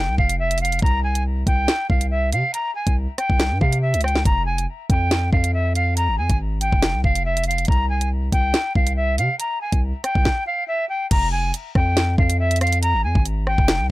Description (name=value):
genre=hip hop, drill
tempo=140 BPM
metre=4/4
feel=half-time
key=F harmonic minor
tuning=A4 = 440 Hz
part: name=breathy bright jazz flute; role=melody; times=0.0-13.9 s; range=E5 to Bb5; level=-23 LUFS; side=equal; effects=low-pass filter
part: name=long sustained 808-style bass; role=bass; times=0.0-13.9 s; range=F1 to C3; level=-21 LUFS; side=equal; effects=none
part: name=drill drum kit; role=drums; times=0.2-13.8 s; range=crash cymbal, hi-hat, kick drum, rim click, snare drum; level=-20 LUFS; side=equal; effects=none
room=light reverb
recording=none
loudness=-18 LUFS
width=side -18 dB against mid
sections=0.0-11.1 A section; 11.1-13.9 B section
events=none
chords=0.0 N.C.; 0.8 C5; 4.3 Fm; 7.7 C5; 11.1 Fm